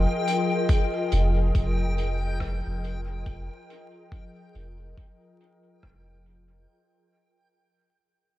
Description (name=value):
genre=ambient dub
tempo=70 BPM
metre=4/4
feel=swing 60% on 16ths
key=F minor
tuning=A4 = 444 Hz
part: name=soft additive organ-like pad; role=sustained chords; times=0.0-6.7 s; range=F3 to G5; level=-30 LUFS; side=left 1 dB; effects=ensemble chorus, built-in reverb
part: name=soft dub sub bass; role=bass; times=0.0-6.7 s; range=F1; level=-26 LUFS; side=equal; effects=none
part: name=backwards swelling texture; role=texture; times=0.0-6.7 s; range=G5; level=-34 LUFS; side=left 4 dB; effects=built-in reverb
part: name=soft-mallet drum kit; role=drums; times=0.3-6.5 s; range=hi-hat, rim click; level=-42 LUFS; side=right 2 dB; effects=low-pass filter on hats, low-pass filter on snare, low-pass filter on room, dub echo
part: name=electronic kick drum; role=drums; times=0.7-6.0 s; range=none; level=-26 LUFS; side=equal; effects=none
room=small room ambience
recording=vinyl crackle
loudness=-23 LUFS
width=side -15 dB against mid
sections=0.0-6.7 A section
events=fade-out 0.0-6.7; filter sweep on drum 0.0-6.7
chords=0.0 Fm11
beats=0.69 1.54 2.40 | 3.26 4.12 4.97 5.83